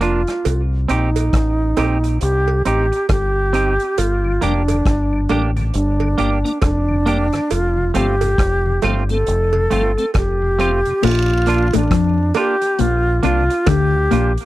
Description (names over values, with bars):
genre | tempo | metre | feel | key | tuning
roots reggae | 68 BPM | 4/4 | swing 61% on 16ths | Bb major | A4 = 440 Hz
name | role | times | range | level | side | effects
mellow hollow silver concert flute | melody | 0.0-14.3 s | D4 to A4 | -19 LUFS | equal | tape echo
semi-hollow electric guitar | accompaniment | 0.0-14.3 s | A3 to G4 | -23 LUFS | right 5 dB | tape echo
deep dub fingered electric bass | bass | 0.0-14.4 s | F1 to F2 | -18 LUFS | equal | none
vintage drum kit | drums | 0.0-14.5 s | crash cymbal, hi-hat, kick drum, rim click | -22 LUFS | equal | none
cowbell and jawbone-type rattle | percussion | 0.5-13.9 s | none | -26 LUFS | right 9 dB | none
tonewheel organ | accompaniment | 4.2-10.9 s | F2 to D4 | -25 LUFS | left 4 dB | overdrive, chorus vibrato
mellow electric guitar | riff | 11.0-14.3 s | A2 to F3 | -20 LUFS | left 8 dB | lush chorus
room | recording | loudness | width
little or no reverb | dry, close 1970s-style studio recording | -15 LUFS | side -16 dB against mid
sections
0.0-11.0 A section; 11.0-14.5 B section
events
none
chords
0.4 Cm; 4.0 Gm; 7.5 F; 11.0 Bb